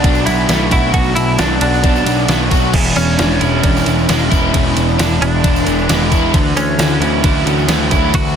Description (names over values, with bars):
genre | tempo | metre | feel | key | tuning
rock, shoegaze and dream pop | 133 BPM | 4/4 | straight | unclear | A4 = 439 Hz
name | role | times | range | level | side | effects
direct-recorded clean electric guitar | melody | 0.0-8.4 s | C#4 to F#4 | -21 LUFS | equal | analog chorus, analog delay
crunchy overdriven guitar | riff | 0.0-8.4 s | E2 to F#4 | -19 LUFS | right 15 dB | reverse reverb
overdriven semi-hollow guitar | riff | 0.0-8.4 s | E2 to F#4 | -19 LUFS | left 14 dB | analog chorus
fuzz picked electric bass | bass | 0.0-8.3 s | E1 to E2 | -17 LUFS | equal | overdrive
detuned 8-bit digital drum machine | drums | 0.0-8.2 s | crash cymbal, kick drum, ride cymbal, snare drum | -16 LUFS | equal | none
tambourine | percussion | 0.1-8.3 s | none | -32 LUFS | right 8 dB | none
twelve-string electric guitar | arpeggios | 2.7-8.4 s | E3 to G#4 | -25 LUFS | right 11 dB | lush chorus, analog delay
room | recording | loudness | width
digital ambience | dense, heavily limited modern master | -11 LUFS | side -8 dB against mid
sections
0.0-8.4 A section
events
none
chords
0.0 Bm7; 2.7 E7; 6.3 Dadd9